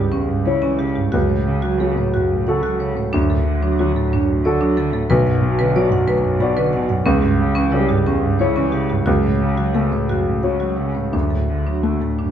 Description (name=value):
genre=neoclassical piano and strings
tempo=90 BPM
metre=3/4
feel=rubato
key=unclear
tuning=A4 = 440 Hz
part: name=warm cello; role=second line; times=0.0-12.3 s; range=D2 to F#3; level=-22 LUFS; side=right 4 dB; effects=none
part: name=warm grand piano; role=accompaniment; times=0.0-12.3 s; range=B1 to D5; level=-18 LUFS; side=left 1 dB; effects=none
part: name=marimba with hard mallets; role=arpeggios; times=0.0-12.3 s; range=C#4 to B5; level=-24 LUFS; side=right 2 dB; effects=slapback echo
room=wet studio reverb, RT60 0.6 s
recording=heard from further back in the room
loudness=-16 LUFS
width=side -9 dB against mid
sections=0.0-12.3 A section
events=none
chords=0.0 C#dim; 1.1 F#m/C#; 3.1 D; 5.1 Bm; 7.1 C#dim; 9.1 F#m/C#; 11.1 D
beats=0.46 | 1.13 1.80 2.47 | 3.13 3.79 4.44 | 5.10 5.75 6.40 | 7.06 7.72 8.39 | 9.06 9.74 10.43 | 11.13 11.84